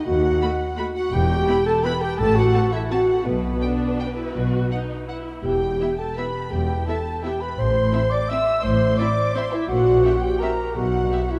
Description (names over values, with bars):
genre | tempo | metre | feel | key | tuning
classical, orchestral ballroom waltz | 168 BPM | 3/4 | uneven beats, rubato | E minor | A4 = 439 Hz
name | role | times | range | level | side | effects
mellow clarinet | second line | 0.0-11.4 s | B3 to E5 | -33 LUFS | equal | none
mellow hollow concert flute | second line | 0.0-11.4 s | B4 to E6 | -33 LUFS | equal | none
warm symphonic violin section | second line | 0.0-11.4 s | B4 to E6 | -35 LUFS | equal | none
mellow French horn section | sustained chords | 0.0-11.4 s | B3 to E5 | -25 LUFS | equal | none
warm symphonic cello section | bass | 0.1-11.1 s | D#2 to B2 | -29 LUFS | equal | none
warm symphonic double bass section | bass | 0.1-11.1 s | E1 to D#2 | -29 LUFS | equal | none
warm studio violin section | melody | 0.4-11.2 s | E5 to B5 | -41 LUFS | equal | none
warm symphonic viola section | accompaniment | 0.4-11.2 s | A3 to G4 | -36 LUFS | equal | none
room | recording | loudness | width
wet cathedral reverb, RT60 5.0 s | in a vast, echoing space | -21 LUFS | mono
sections
0.0-11.4 A section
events
none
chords
0.0 B7/D# (rootless); 1.1 Em; 2.2 F#dim/A; 3.3 E5/B; 4.3 B; 5.4 Em; 7.6 Am; 9.7 A#m6; 10.8 Em/B